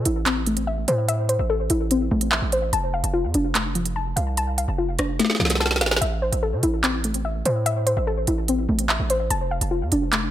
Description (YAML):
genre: hip hop, drill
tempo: 146 BPM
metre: 4/4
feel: half-time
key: A minor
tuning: A4 = 438 Hz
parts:
  - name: soft round pluck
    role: arpeggios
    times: 0.0-10.3 s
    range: F3 to A5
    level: -24 LUFS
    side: left 2 dB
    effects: chorus, low-pass filter, digital delay
  - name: distorted 808-style bass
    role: bass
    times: 0.0-10.3 s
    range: F1 to C3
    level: -25 LUFS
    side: right 1 dB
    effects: distortion
  - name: drill drum kit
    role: drums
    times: 0.1-10.2 s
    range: handclaps, hi-hat, rim click, snare drum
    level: -23 LUFS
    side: right 2 dB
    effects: none
room: light reverb, digital ambience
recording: none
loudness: -20 LUFS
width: side -12 dB against mid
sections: 0.0-10.3 A section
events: drum fill 5.2-6.0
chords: 0.0 Am; 2.7 F6; 6.0 Am; 9.3 F6